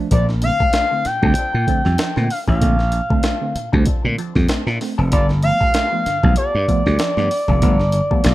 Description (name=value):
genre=funk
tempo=96 BPM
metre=4/4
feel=swing 56% on 16ths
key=unclear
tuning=A4 = 436 Hz
part: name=tine electric piano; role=stabs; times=0.0-8.2 s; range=G2 to C4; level=-24 LUFS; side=right 2 dB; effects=overdrive, medium stereo tremolo
part: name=expressive portamento lead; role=melody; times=0.1-8.3 s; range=D5 to G5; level=-20 LUFS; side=left 1 dB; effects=chorus
part: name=hollow-body jazz guitar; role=accompaniment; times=0.1-8.3 s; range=F3 to A4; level=-31 LUFS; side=left 6 dB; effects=wah
part: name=mellow electric guitar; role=riff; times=0.1-8.3 s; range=F3 to C4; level=-27 LUFS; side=right 6 dB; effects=none
part: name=slap bass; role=bass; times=0.1-8.3 s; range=F1 to Bb2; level=-17 LUFS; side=equal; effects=none
part: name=breakbeat sampler-style drum kit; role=drums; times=0.1-8.3 s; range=hi-hat, kick drum, snare drum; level=-20 LUFS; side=equal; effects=none
room=digital ambience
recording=rough home demo mix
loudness=-15 LUFS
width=side -16 dB against mid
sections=0.1-8.3 A section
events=none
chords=0.1 Bbmaj9; 5.1 G9